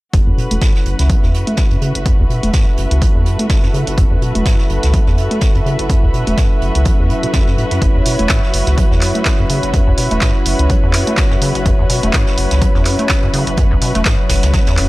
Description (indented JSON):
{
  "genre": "acid house",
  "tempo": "125 BPM",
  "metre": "4/4",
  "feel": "swing 56% on 16ths",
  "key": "F# minor",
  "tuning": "A4 = 440 Hz",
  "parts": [
    { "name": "warm analog pad", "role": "sustained chords", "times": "0.1-14.9 s", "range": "F#3 to C#5", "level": "-23 LUFS", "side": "left 2 dB", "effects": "chorus, sidechain pumping" },
    { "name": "deep acid bass", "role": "riff", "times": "0.1-14.9 s", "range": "F#1 to A3", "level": "-19 LUFS", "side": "equal", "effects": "tube saturation" },
    { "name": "round analog bass", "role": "bass", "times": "0.1-14.9 s", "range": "E1 to C#2", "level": "-16 LUFS", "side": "equal", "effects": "sidechain pumping" },
    { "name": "electronic kick drum", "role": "drums", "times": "0.1-14.6 s", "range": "none", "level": "-14 LUFS", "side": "equal", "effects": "none" },
    { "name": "punchy analog drum machine", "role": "drums", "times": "0.1-14.9 s", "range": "handclaps, hi-hat", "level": "-21 LUFS", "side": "equal", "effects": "none" },
    { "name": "vintage brush drum kit", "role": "drums", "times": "0.1-14.9 s", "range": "hi-hat, snare drum", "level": "-28 LUFS", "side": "right 2 dB", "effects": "sidechain pumping on hats, high-pass filter on hats, high-pass filter on snare, high-pass filter on room" },
    { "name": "muted chamber string section", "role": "texture", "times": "0.1-14.9 s", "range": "F#4 to E5", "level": "-23 LUFS", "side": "right 1 dB", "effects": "sidechain pumping" }
  ],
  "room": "small room ambience",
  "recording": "none",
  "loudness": "-12 LUFS",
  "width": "side -19 dB against mid",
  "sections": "0.1-14.9 A section",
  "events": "filter sweep on acid bass 0.1-14.9",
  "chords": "0.1 F#m7",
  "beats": "| 0.14 0.62 1.10 1.58 | 2.06 2.54 3.02 3.50 | 3.98 4.46 4.94 5.42 | 5.90 6.38 6.86 7.34 | 7.82 8.30 8.78 9.26 | 9.74 10.22 10.70 11.18 | 11.66 12.14 12.62 13.10 | 13.58 14.06 14.54"
}